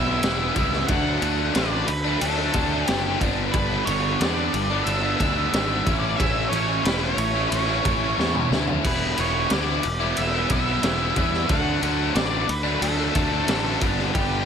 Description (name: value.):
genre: quiet-loud alternative rock.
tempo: 90 BPM.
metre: 4/4.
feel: straight.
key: unclear.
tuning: A4 = 441 Hz.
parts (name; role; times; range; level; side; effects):
octave-fuzz lead guitar; melody; 0.0-14.5 s; G4 to F#5; -27 LUFS; right 2 dB; distortion, slapback echo.
overdriven electric guitar; riff; 0.0-14.5 s; G2 to E4; -28 LUFS; right 13 dB; none.
tight distorted guitar; riff; 0.0-14.5 s; G2 to E4; -27 LUFS; left 16 dB; distortion.
fuzz picked electric bass; bass; 0.0-14.4 s; E1 to E2; -27 LUFS; equal; overdrive.
raw garage drum kit; drums; 0.2-14.3 s; crash cymbal, kick drum, ride cymbal, snare drum, toms; -26 LUFS; equal; none.
room: light reverb.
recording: none.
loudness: -20 LUFS.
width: side -7 dB against mid.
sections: 0.0-14.5 A section.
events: drum fill 8.2-8.8.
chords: 0.0 Em; 0.9 D; 3.2 G; 5.9 A; 8.8 Em; 11.5 D; 13.8 G.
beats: 0.23 | 0.89 1.55 2.21 2.88 | 3.54 4.20 4.87 5.53 | 6.19 6.85 7.51 8.18 | 8.84 9.50 10.17 10.83 | 11.49 12.15 12.82 13.48 | 14.15.